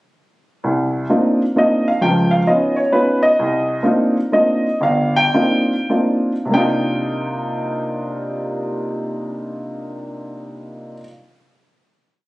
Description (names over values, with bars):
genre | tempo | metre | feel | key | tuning
jazz | 92-131 BPM | 3/4 | swing 66% on 8ths | C minor | A4 = 441 Hz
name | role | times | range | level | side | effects
warm upright piano | solo | 0.6-11.1 s | G1 to G5 | -16 LUFS | equal | none
room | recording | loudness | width
moderate large studio reverb, RT60 0.9 s | recorded on a phone in the room, studio reverb | -15 LUFS | side -19 dB against mid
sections
0.6-6.5 A section; 6.5-10.4 final chord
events
slowing down 3.4-6.5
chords
0.6 Cm11; 2.0 Db9; 3.4 Cm11